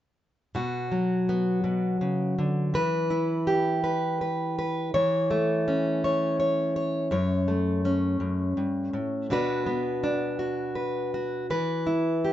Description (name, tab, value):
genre	folk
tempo	55 BPM (dotted quarters)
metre	6/8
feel	straight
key	B minor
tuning	A4 = 438 Hz
part	fingerpicked plugged-in steel-string acoustic guitar	solo	0.5-12.3 s	F#2 to C#5	-24 LUFS	equal	none
room	moderate studio reverb, RT60 0.6 s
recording	band playing live in one room, nothing above 7.6 kHz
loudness	-24 LUFS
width	side -12 dB against mid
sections	0.5-12.3 A section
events	none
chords	0.5 Bm; 2.7 Em; 4.9 A/E; 7.1 F#m; 9.3 Bm; 11.5 E5